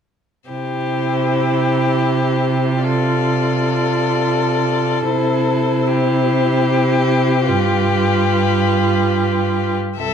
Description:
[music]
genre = classical, slow romantic movement for string quartet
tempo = 65-81 BPM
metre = 3/4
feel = rubato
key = C major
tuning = A4 = 440 Hz
[part]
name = rich violin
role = melody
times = 0.5-10.1 s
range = B4 to E5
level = -22 LUFS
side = left 12 dB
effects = none
[part]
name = rich violin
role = second line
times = 0.5-10.1 s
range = G4 to A4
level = -21 LUFS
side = left 4 dB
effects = none
[part]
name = dark viola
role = accompaniment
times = 0.5-9.7 s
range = E4 to F4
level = -21 LUFS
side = right 2 dB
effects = none
[part]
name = clear cello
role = bass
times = 0.5-10.1 s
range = C2 to C3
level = -19 LUFS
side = right 4 dB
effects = none
[sound]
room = moderate recital hall reverb, RT60 1.6 s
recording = dark, warm production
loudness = -15 LUFS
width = side -7 dB against mid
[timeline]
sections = 0.5-10.0 A section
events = none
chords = 0.5 C; 2.8 Dm7/C; 5.1 C; 7.5 G7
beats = | 0.51 1.31 2.08 | 2.84 3.59 4.34 | 5.10 5.86 6.66 | 7.47 8.27 9.10 | 9.99

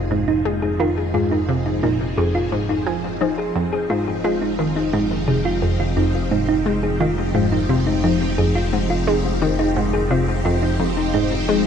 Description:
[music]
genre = ambient, sequencer-driven space music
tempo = 87 BPM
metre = 4/4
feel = straight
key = F minor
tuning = A4 = 440 Hz
[part]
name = phased string machine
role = sustained chords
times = 0.0-11.7 s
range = F3 to Ab4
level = -27 LUFS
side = left 1 dB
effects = ensemble chorus, phaser
[part]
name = analog pluck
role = riff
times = 0.0-11.7 s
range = F2 to Ab3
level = -21 LUFS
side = left 1 dB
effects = chorus, phaser, ping-pong delay
[part]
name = fat analog bass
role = bass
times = 0.0-11.7 s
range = F1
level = -26 LUFS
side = equal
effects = tube saturation
[part]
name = thumb-piano-like synth pluck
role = arpeggios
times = 0.1-11.6 s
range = Eb4 to Ab5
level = -22 LUFS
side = moving between left 2 dB and right 5 dB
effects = chorus, auto-pan, ping-pong delay
[sound]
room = moderate huge ambient reverb, RT60 8.9 s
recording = dark, warm production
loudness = -18 LUFS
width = side -7 dB against mid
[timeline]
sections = 0.0-11.7 A section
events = fade-in on string machine 0.0-11.7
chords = 0.0 Fm7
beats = 0.11 | 0.80 1.49 2.18 2.87 | 3.56 4.25 4.93 5.62 | 6.31 7.00 7.69 8.38 | 9.07 9.76 10.45 11.14

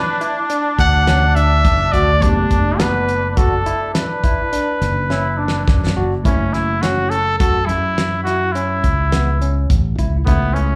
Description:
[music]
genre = progressive instrumental, band music in an uneven meter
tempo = 104 BPM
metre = 7/4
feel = straight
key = F# phrygian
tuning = A4 = 440 Hz
[part]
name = clear trumpet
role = melody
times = 0.0-10.8 s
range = B3 to F#5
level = -21 LUFS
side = equal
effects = slapback echo
[part]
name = trombone with straight mute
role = second line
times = 0.0-6.2 s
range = D4 to E4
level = -27 LUFS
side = equal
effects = slapback echo, digital delay
[part]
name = hollow-body jazz guitar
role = accompaniment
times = 0.0-10.8 s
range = A3 to G4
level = -28 LUFS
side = equal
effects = slapback echo
[part]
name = barky tine electric piano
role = arpeggios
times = 0.2-10.6 s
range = B3 to F#4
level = -28 LUFS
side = equal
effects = slapback echo
[part]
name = damped 70s drum kit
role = drums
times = 0.2-10.7 s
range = hi-hat, kick drum, snare drum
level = -20 LUFS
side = equal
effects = none
[part]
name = fingered electric bass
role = bass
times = 0.8-10.8 s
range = F#1 to F#2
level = -21 LUFS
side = equal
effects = none
[sound]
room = moderate club reverb, RT60 0.9 s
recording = live gig heard through the venue's PA, club reverb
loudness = -17 LUFS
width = mono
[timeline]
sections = 0.0-6.3 A section; 6.3-10.8 B section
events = drum fill 5.1-6.3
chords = 0.0 Gadd9/F#; 6.3 F#m7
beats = 0.50 1.07 1.65 | 2.22 2.80 3.38 3.95 4.53 5.10 5.68 | 6.25 6.83 7.40 7.97 8.55 9.12 9.70 | 10.27

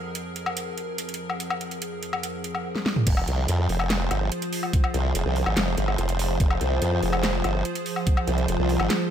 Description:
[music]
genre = heavy wobble dubstep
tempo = 144 BPM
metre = 4/4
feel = half-time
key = F minor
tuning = A4 = 440 Hz
[part]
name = evolving wavetable pad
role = sustained chords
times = 0.0-9.1 s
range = F2 to C5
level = -29 LUFS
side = equal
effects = chorus, built-in reverb, sidechain pumping
[part]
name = dubstep drum kit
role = drums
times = 0.1-9.0 s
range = crash cymbal, handclaps, hi-hat, snare drum, toms, woodblock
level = -28 LUFS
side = left 1 dB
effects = small room reverb
[part]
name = formant-sweep wobble bass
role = bass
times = 3.1-8.9 s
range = F1 to F2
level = -24 LUFS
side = equal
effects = chorus, overdrive
[part]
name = electronic kick drum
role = drums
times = 3.1-8.2 s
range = none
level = -22 LUFS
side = equal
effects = small room reverb
[sound]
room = light reverb, digital ambience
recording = none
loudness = -23 LUFS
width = side -9 dB against mid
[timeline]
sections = 0.0-3.1 A section; 3.1-9.1 B section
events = build-up 0.0-3.1; drum fill 2.8-3.1; drop 3.1-9.1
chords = 0.0 Fm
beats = 0.15 0.57 0.98 | 1.40 1.82 2.23 2.65 | 3.07 3.48 3.90 4.32 | 4.73 5.15 5.57 5.98 | 6.40 6.82 7.23 7.65 | 8.07 8.48 8.90

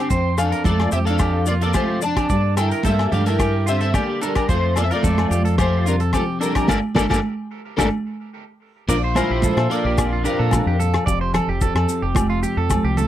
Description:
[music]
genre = highlife guitar band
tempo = 110 BPM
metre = 4/4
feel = straight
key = F major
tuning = A4 = 441 Hz
[part]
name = electric guitar at the edge of break-up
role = melody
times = 0.0-10.8 s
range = C4 to A5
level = -24 LUFS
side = left 3 dB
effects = ensemble chorus
[part]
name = warm alto saxophone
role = second line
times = 0.0-10.8 s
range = F3 to E4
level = -28 LUFS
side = right 5 dB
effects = none
[part]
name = nylon-string guitar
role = accompaniment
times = 0.0-13.1 s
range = F2 to A4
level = -26 LUFS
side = left 4 dB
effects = none
[part]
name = electric guitar at the edge of break-up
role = arpeggios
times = 0.0-13.1 s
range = F4 to D5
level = -26 LUFS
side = right 6 dB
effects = tape echo
[part]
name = deep dub fingered electric bass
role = bass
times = 0.1-13.1 s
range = F1 to Bb2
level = -22 LUFS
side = equal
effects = none
[part]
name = damped 70s drum kit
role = drums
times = 0.1-13.1 s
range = crash cymbal, hi-hat, kick drum, rim click, snare drum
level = -23 LUFS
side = equal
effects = none
[part]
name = congas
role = percussion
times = 0.1-13.1 s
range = none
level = -26 LUFS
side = right 4 dB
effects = none
[part]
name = maracas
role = percussion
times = 0.1-13.1 s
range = none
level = -33 LUFS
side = left 8 dB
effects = none
[part]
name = agogo bells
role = percussion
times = 0.4-12.8 s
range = none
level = -28 LUFS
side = left 8 dB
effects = none
[sound]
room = little or no reverb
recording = dry, close 1970s-style studio recording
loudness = -17 LUFS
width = side -12 dB against mid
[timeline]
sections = 0.0-8.9 A section; 8.9-13.1 B section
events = band accent 6.7-8.9; drum fill 8.6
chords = 0.1 F; 2.3 Gmadd9; 4.5 F; 6.7 Gmadd9; 8.9 Bb; 11.1 Fadd9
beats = | 0.11 0.66 1.20 1.75 | 2.30 2.85 3.40 3.95 | 4.50 5.04 5.59 6.14 | 6.69 7.24 7.78 8.33 | 8.88 9.43 9.97 10.52 | 11.07 11.61 12.16 12.70

